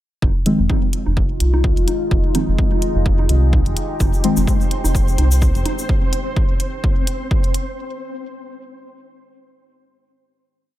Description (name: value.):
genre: dub techno.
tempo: 127 BPM.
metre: 4/4.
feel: swing 56% on 16ths.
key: F minor.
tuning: A4 = 440 Hz.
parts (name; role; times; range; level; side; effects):
deep dark ambient pad; sustained chords; 1.0-5.9 s; Ab3 to G4; -26 LUFS; left 2 dB; chorus, built-in reverb, sidechain pumping.
round analog bass; bass; 0.2-5.6 s; F1 to C2; -17 LUFS; equal; sidechain pumping.
electronic kick drum; drums; 0.2-7.4 s; none; -18 LUFS; equal; none.
congas; percussion; 0.2-5.8 s; none; -31 LUFS; right 4 dB; sidechain pumping on perc, dub echo.
deep mellow chord stab; stabs; 0.5-4.4 s; Eb3 to C4; -21 LUFS; left 1 dB; chorus, phaser, sidechain pumping, dub echo.
electronic hi-hat; drums; 0.5-7.7 s; none; -27 LUFS; left 1 dB; none.
tube shaker; percussion; 4.0-5.9 s; none; -29 LUFS; left 3 dB; none.
flickering grainy texture; texture; 4.4-7.8 s; C4 to C5; -29 LUFS; equal; built-in reverb, sidechain pumping.
room: digital ambience.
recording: echo-heavy mix.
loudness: -15 LUFS.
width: side -14 dB against mid.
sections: 0.2-7.8 groove.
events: none.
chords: 0.2 Fm7.